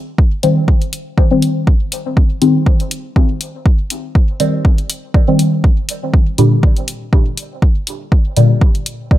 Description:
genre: dub techno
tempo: 121 BPM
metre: 4/4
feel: swing 55% on 16ths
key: C minor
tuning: A4 = 440 Hz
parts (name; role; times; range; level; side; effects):
- electronic kick drum; drums; 0.2-9.2 s; none; -11 LUFS; equal; overdrive
- deep mellow chord stab; stabs; 0.4-8.5 s; Bb2 to C4; -15 LUFS; left 1 dB; chorus, phaser, sidechain pumping, dub echo
- electronic hi-hat; drums; 0.4-9.0 s; none; -22 LUFS; left 2 dB; overdrive
room: light reverb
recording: none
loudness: -12 LUFS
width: side -14 dB against mid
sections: 0.0-9.2 A section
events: none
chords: 0.0 Cm; 5.6 Gm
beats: 0.18 0.68 1.18 | 1.67 2.17 2.66 3.16 | 3.66 4.15 4.65 5.14 | 5.64 6.13 6.63 7.13 | 7.62 8.12 8.62 9.11

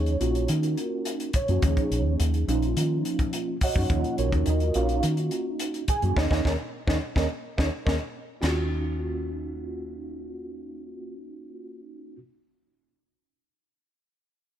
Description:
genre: electric jazz fusion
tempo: 106 BPM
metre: 4/4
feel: straight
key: Eb minor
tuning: A4 = 439 Hz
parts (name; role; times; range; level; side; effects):
- mellow tine electric piano; accompaniment; 0.0-12.2 s; F3 to Ab5; -28 LUFS; right 2 dB; medium stereo tremolo, ensemble chorus
- fingered electric bass; bass; 0.0-12.2 s; Bb1 to Eb3; -26 LUFS; equal; none
- crisp fusion drum kit; drums; 0.1-8.6 s; hi-hat, kick drum, snare drum, splash cymbal; -29 LUFS; equal; none
room: light reverb, small room ambience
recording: none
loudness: -24 LUFS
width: side -10 dB against mid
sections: 0.0-8.4 A section; 8.4-10.7 B section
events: band accent 6.2-8.4; tine electric piano fill 7.6-8.4; drum fill 8.1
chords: 0.0 Ebm9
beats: 0.49 1.06 | 1.63 2.19 2.76 3.33 | 3.90 4.46 5.03 5.60 | 6.16 6.73 7.30 7.87 | 8.43 9.00 9.57 10.13

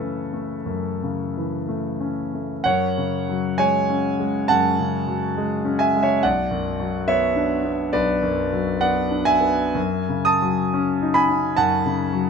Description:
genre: classical, impressionist solo piano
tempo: 56-73 BPM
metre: 4/4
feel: rubato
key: F# minor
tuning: A4 = 440 Hz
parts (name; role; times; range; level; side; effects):
- clear concert grand piano; solo; 0.0-12.3 s; B1 to D#6; -19 LUFS; equal; none
room: light reverb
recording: none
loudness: -19 LUFS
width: side -6 dB against mid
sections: 0.0-2.7 A section; 2.7-12.3 A section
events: none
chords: 0.0 F#m7; 2.7 F#madd9; 6.2 Bm; 9.8 F#m6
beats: 0.68 1.68 | 2.65 3.59 4.49 5.37 | 6.23 7.07 7.93 8.82 | 9.76 10.73 11.57

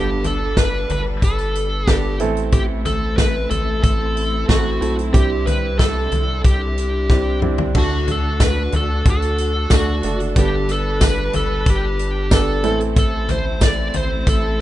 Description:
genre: piano-driven pop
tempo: 92 BPM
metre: 4/4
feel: straight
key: G major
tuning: A4 = 437 Hz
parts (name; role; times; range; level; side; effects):
- high-gain lead guitar; melody; 0.0-14.6 s; F#4 to D5; -23 LUFS; equal; distortion
- clear concert grand piano; accompaniment; 0.0-14.6 s; G2 to A4; -25 LUFS; right 3 dB; none
- clear studio string section; sustained chords; 0.0-14.6 s; C3 to B4; -30 LUFS; left 1 dB; none
- round analog bass; bass; 0.0-14.6 s; F#1 to D2; -22 LUFS; equal; none
- natural country drum kit; drums; 0.2-14.4 s; crash cymbal, hi-hat, kick drum, snare drum, toms; -18 LUFS; equal; none
- tambourine; percussion; 8.4-13.8 s; none; -34 LUFS; left 6 dB; none
room: studio ambience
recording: rough home demo mix, nothing above 10.5 kHz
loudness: -16 LUFS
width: side -14 dB against mid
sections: 0.0-14.6 A section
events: drum fill 7.1-7.8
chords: 0.0 Gadd9; 2.2 Am; 5.1 Cadd9; 7.8 D; 10.4 Gadd9; 12.6 Am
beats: 0.57 1.23 1.88 | 2.53 3.18 3.83 4.49 | 5.14 5.79 6.45 7.10 | 7.75 8.40 9.05 9.71 | 10.36 11.01 11.66 12.32 | 12.97 13.62 14.27

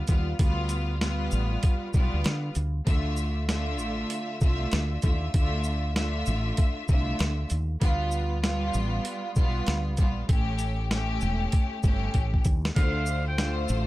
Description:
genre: hip hop, boom-bap hip-hop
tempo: 97 BPM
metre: 4/4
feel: swing 62% on 16ths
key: D dorian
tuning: A4 = 440 Hz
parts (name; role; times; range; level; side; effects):
- bright symphonic string section; accompaniment; 0.0-13.9 s; A2 to E5; -31 LUFS; equal; cassette tape, high-pass filter, low-pass filter
- woody fretless electric bass; bass; 0.1-13.9 s; E1 to D3; -28 LUFS; equal; none
- boom bap sampler-style drum kit; drums; 0.1-13.9 s; hi-hat, kick drum, shaker, snare drum; -25 LUFS; equal; none
- trumpet with straight mute; melody; 12.8-13.6 s; F5 to G5; -33 LUFS; right 1 dB; high-pass filter, low-pass filter, tape echo
room: little or no reverb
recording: none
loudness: -24 LUFS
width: side -17 dB against mid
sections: 0.0-12.8 A section; 12.8-13.9 B section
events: drum fill 12.1-12.8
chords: 0.0 G7; 2.9 Dmadd9; 7.8 G7; 10.3 A7; 12.8 Dm7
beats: | 0.39 1.01 1.63 2.25 | 2.87 3.49 4.11 4.72 | 5.34 5.96 6.58 7.20 | 7.82 8.44 9.05 9.67 | 10.29 10.91 11.53 12.15 | 12.76 13.38

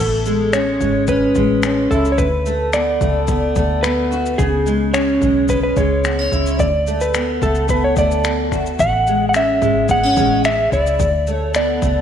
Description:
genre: acoustic pop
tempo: 109 BPM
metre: 4/4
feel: straight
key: A major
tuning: A4 = 440 Hz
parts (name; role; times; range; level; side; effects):
- electric slide guitar; melody; 0.0-12.0 s; G#4 to F#5; -19 LUFS; equal; none
- fingerpicked steel-string acoustic guitar; accompaniment; 0.0-12.0 s; C#3 to F#4; -19 LUFS; equal; double-tracked left and right
- vintage muted fingered electric bass; bass; 0.0-12.0 s; G#1 to D2; -22 LUFS; equal; none
- punchy analog drum machine; drums; 0.3-12.0 s; finger snaps, kick drum, shaker; -23 LUFS; left 2 dB; none
room: moderate echo chamber reverb, RT60 1.9 s, digital ambience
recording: 1960s-style stereo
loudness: -14 LUFS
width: side -9 dB against mid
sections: 0.0-12.0 A section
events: none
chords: 0.0 Amaj7; 2.2 D6; 4.4 C#m; 6.6 D6; 8.8 Amaj7; 11.0 D5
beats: 0.53 1.08 1.63 | 2.19 2.73 3.29 3.84 | 4.39 4.94 5.49 6.04 | 6.59 7.14 7.69 8.24 | 8.79 9.35 9.90 10.45 | 11.00 11.55

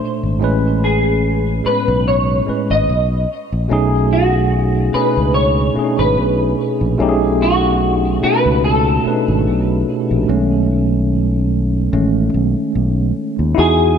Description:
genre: R&B, neo-soul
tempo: 73 BPM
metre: 4/4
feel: swing 55% on 16ths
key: unclear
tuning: A4 = 440 Hz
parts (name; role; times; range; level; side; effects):
- tine electric piano; accompaniment; 0.0-14.0 s; A2 to B#4; -17 LUFS; right 1 dB; medium stereo tremolo
- fingered electric bass; bass; 0.2-14.0 s; G#1 to E2; -17 LUFS; equal; none
- semi-hollow electric guitar; melody; 0.8-14.0 s; F#4 to D#5; -18 LUFS; equal; ensemble chorus, ping-pong delay
room: moderate lush hall reverb, RT60 2.2 s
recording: dreamy mix soaked in reverb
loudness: -13 LUFS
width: side -7 dB against mid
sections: 0.0-10.3 A section; 10.3-13.6 B section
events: tine electric piano solo 10.3-13.6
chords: 0.4 Amaj9; 2.9 B13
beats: | 0.41 1.24 2.06 2.88 | 3.70 4.52 5.34 6.17 | 6.99 7.81 8.63 9.45 | 10.28 11.10 11.92 12.74 | 13.56

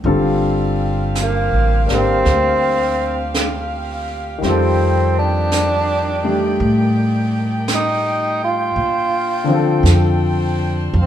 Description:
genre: jazz ballad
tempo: 55 BPM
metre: 4/4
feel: swing 68% on 8ths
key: G minor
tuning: A4 = 441 Hz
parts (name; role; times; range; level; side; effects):
- clear concert grand piano; accompaniment; 0.0-11.1 s; D3 to Bb4; -20 LUFS; left 2 dB; none
- warm saxophone section; sustained chords; 0.0-11.1 s; Eb3 to G5; -26 LUFS; equal; none
- upright bass; bass; 0.0-11.1 s; G1 to Bb2; -19 LUFS; right 1 dB; none
- jazz brush drum kit; drums; 0.1-11.1 s; brushed snare drum, hi-hat, snare drum; -26 LUFS; right 2 dB; none
- breathy tenor saxophone; melody; 1.2-11.1 s; Bb3 to F4; -18 LUFS; right 1 dB; none
room: wet large studio reverb, RT60 1.2 s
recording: band playing live in one room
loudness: -15 LUFS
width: side -10 dB against mid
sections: 0.1-11.1 A section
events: tenor saxophone solo 0.1-11.1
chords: 0.1 Gm11; 4.4 F13; 8.8 Bb69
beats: | 0.05 1.15 2.25 3.34 | 4.42 5.50 6.59 7.67 | 8.76 9.85 10.94

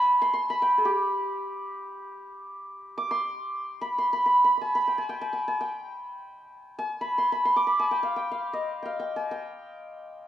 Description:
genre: Persian modal ensemble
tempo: free time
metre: none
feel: none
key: G dastgah homayun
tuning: A4 = 440 Hz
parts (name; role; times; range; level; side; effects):
- santur; solo; 0.0-10.3 s; G4 to D6; -24 LUFS; equal; none
room: moderate large studio reverb, RT60 0.8 s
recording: band playing live in one room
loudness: -24 LUFS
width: side -11 dB against mid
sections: 0.0-2.8 A section; 2.8-10.3 A section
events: none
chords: none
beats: free time

